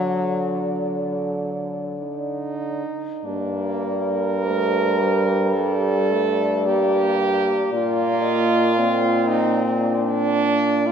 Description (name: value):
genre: classical, lyrical piece for horn quartet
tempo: 47-58 BPM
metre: 4/4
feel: rubato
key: G minor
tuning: A4 = 435 Hz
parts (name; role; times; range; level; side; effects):
- dark French horn; melody; 0.0-10.9 s; C5 to Eb5; -28 LUFS; left 6 dB; none
- warm French horn; second line; 0.0-10.9 s; D4 to Bb4; -22 LUFS; right 4 dB; none
- warm French horn; accompaniment; 0.0-10.9 s; F#3 to C4; -27 LUFS; left 2 dB; none
- mellow French horn; bass; 0.0-10.9 s; G2 to D3; -24 LUFS; equal; none
room: wet concert hall reverb, RT60 2.5 s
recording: heard from further back in the room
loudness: -19 LUFS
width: side -7 dB against mid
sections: 0.0-3.2 A section; 3.2-10.9 B section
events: none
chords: 0.0 D; 3.2 Gm; 7.7 Bb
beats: 0.77 2.01 | 3.24 4.44 5.53 6.63 | 7.70 8.74 9.79 10.86